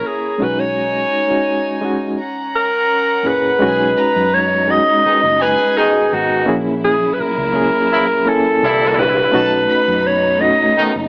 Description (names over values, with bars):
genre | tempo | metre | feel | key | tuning
soul | 84 BPM | 4/4 | straight | B major | A4 = 440 Hz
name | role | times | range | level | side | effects
breathy alto saxophone | melody | 0.0-10.8 s | F#4 to D#5 | -18 LUFS | equal | none
warm studio violin section | second line | 0.0-10.4 s | C#4 to B5 | -26 LUFS | equal | none
reed electric piano | accompaniment | 0.0-11.1 s | F#2 to G#5 | -22 LUFS | equal | overdrive, fast tremolo
vintage muted fingered electric bass | bass | 0.4-11.1 s | F#1 to F#2 | -29 LUFS | equal | none
warm studio string section | sustained chords | 3.6-11.1 s | A#2 to E4 | -28 LUFS | equal | none
clear horn section | stabs | 5.1-10.9 s | Bb2 to E4 | -21 LUFS | equal | none
room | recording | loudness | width
light reverb, studio ambience | AM radio sound | -16 LUFS | mono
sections
0.0-3.6 A section; 3.6-11.1 B section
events
none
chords
0.4 B69; 2.2 F#9; 3.6 B6; 6.5 F#9/A#; 8.6 C9; 9.3 B7